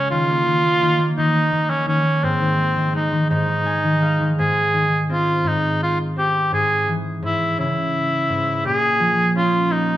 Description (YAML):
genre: children's music, lullaby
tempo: 56 BPM (dotted quarters)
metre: 6/8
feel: straight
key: Ab major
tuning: A4 = 439 Hz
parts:
  - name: warm cor anglais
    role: melody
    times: 0.0-10.0 s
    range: C4 to Ab4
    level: -19 LUFS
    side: equal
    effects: none
  - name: concert harp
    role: accompaniment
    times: 0.0-10.0 s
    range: Ab2 to Ab5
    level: -21 LUFS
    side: equal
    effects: none
room: wet large studio reverb, RT60 1.3 s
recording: band playing live in one room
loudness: -17 LUFS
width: side -14 dB against mid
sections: 0.0-4.4 A section; 4.4-10.0 B section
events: harp fill 3.3-4.4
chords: 0.1 Eb5; 2.2 Ab; 6.5 Dbm/Ab; 8.6 Bbm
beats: | 0.12 1.17 | 2.23 3.30 | 4.38 5.45 | 6.52 7.58 | 8.64 9.70